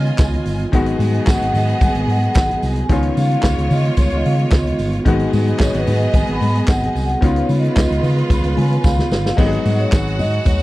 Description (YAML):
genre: disco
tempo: 111 BPM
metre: 4/4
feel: straight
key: G# dorian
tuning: A4 = 444 Hz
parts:
  - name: clear symphonic string section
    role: second line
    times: 0.0-10.6 s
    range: G#3 to G#5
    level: -26 LUFS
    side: right 1 dB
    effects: none
  - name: bright concert grand piano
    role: accompaniment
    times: 0.0-10.6 s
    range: D#3 to G#4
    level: -24 LUFS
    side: left 4 dB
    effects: none
  - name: mellow tonewheel organ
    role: sustained chords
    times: 0.0-9.4 s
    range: D#3 to G#4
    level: -24 LUFS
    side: right 3 dB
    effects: chorus vibrato, stopped rotary speaker
  - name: fingered electric bass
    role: bass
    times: 0.0-10.6 s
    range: G1 to C#3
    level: -19 LUFS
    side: equal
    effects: none
  - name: vintage drum kit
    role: drums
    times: 0.1-10.6 s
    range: crash cymbal, handclaps, hi-hat, kick drum, snare drum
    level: -16 LUFS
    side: equal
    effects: none
  - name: congas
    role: percussion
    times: 0.2-10.6 s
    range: none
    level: -27 LUFS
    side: left 3 dB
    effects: none
  - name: tambourine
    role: percussion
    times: 0.2-10.6 s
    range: none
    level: -40 LUFS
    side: right 5 dB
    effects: none
  - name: vibraphone with soft mallets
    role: melody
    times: 1.3-10.6 s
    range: B4 to B5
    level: -23 LUFS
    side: equal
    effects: none
room: little or no reverb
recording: dry, close 1970s-style studio recording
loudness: -14 LUFS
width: side -18 dB against mid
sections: 0.0-9.4 A section; 9.4-10.6 B section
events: vibraphone solo 0.0-9.4; drum fill 8.8-9.4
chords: 0.0 C#9; 0.7 G#m7; 2.9 C#9; 5.1 G#m7; 7.2 C#9; 9.4 G#m7